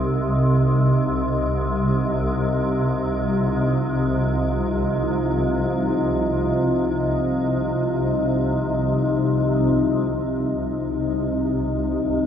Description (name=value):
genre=dark ambient drone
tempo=free time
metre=none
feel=none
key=C minor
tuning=A4 = 440 Hz
part: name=deep dark ambient pad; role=sustained chords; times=0.0-12.3 s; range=C4 to Eb5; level=-23 LUFS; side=left 1 dB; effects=chorus, built-in reverb
part: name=swarming drone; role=drone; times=0.0-12.3 s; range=C2 to C3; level=-22 LUFS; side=equal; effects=built-in reverb
part: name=taiko ensemble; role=percussion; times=9.7-12.3 s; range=none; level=barely audible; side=none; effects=none
room=wet spring reverb, RT60 2.4 s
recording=echo-heavy mix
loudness=-19 LUFS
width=side -8 dB against mid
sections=0.0-9.7 A section; 9.7-12.3 B section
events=none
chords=0.0 Cm